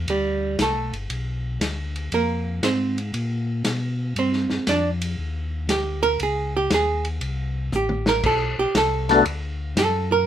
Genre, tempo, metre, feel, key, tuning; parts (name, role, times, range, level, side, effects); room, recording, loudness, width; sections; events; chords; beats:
soul jazz organ trio; 118 BPM; 4/4; swing 68% on 8ths; A4 = 440 Hz
mellow tonewheel organ; bass; 0.0-10.3 s; G1 to B2; -26 LUFS; left 1 dB; overdrive, chorus vibrato, slow rotary speaker
archtop guitar, miked and amplified; accompaniment; 0.1-10.3 s; G3 to D5; -21 LUFS; right 3 dB
vintage drum kit; drums; 0.1-9.9 s; crash cymbal, hi-hat, kick drum, ride cymbal, snare drum, toms; -28 LUFS; left 1 dB
percussive tonewheel organ; melody; 9.1-9.2 s; A3 to A4; -15 LUFS; left 5 dB; slow rotary speaker, overdrive, chorus vibrato
light reverb; minimal, uncompressed stereo recording; -21 LUFS; side -10 dB against mid
0.1-10.3 A section
hollow-body jazz guitar solo 0.1-10.3; drum fill 7.7-8.2
0.1 Gadd9; 2.1 Fm; 3.1 N.C.; 4.2 Eb6; 6.2 C#sus2; 7.2 Am7; 8.2 Bm7
| 0.08 0.58 1.09 1.60 | 2.11 2.62 3.13 3.64 | 4.16 4.67 5.18 5.69 | 6.20 6.71 7.22 7.73 | 8.24 8.75 9.26 9.77